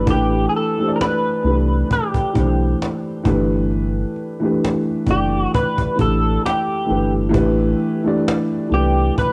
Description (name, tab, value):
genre	lo-fi hip hop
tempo	66 BPM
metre	4/4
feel	swing 58% on 16ths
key	unclear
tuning	A4 = 440 Hz
part	electric guitar through a small old amp	melody	0.0-9.3 s	G4 to B4	-24 LUFS	equal	analog chorus, low-pass filter, cassette tape, tape echo
part	dark upright piano	accompaniment	0.0-9.3 s	E3 to D5	-22 LUFS	equal	low-pass filter, cassette tape
part	sub bass with octave	bass	0.0-9.1 s	F#1 to C2	-23 LUFS	equal	none
part	cajon	drums	0.1-9.3 s	none	-24 LUFS	equal	cassette tape
room	studio reverb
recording	home recording on cassette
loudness	-19 LUFS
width	mono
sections	0.0-9.3 A section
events	none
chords	0.1 Am9; 3.3 Em11; 7.3 Am9